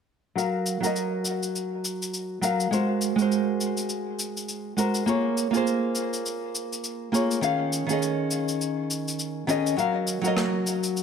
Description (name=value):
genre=sunset chillout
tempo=102 BPM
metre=4/4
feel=swing 58% on 16ths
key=unclear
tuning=A4 = 440 Hz
part: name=nylon-string guitar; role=accompaniment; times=0.4-11.0 s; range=Eb3 to F5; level=-24 LUFS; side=moving between left 5 dB and right 4 dB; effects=auto-pan, low-pass filter, digital delay
part: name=cabasa and rim click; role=drums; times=0.4-11.0 s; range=none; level=-31 LUFS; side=left 2 dB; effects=none
room=moderate lush hall reverb, RT60 2.4 s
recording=none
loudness=-24 LUFS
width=side -7 dB against mid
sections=0.4-11.0 A section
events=none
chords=0.4 Gbmaj7; 2.7 Ab9; 5.1 Bbm7; 7.4 Eb9sus4; 9.8 Gbmaj7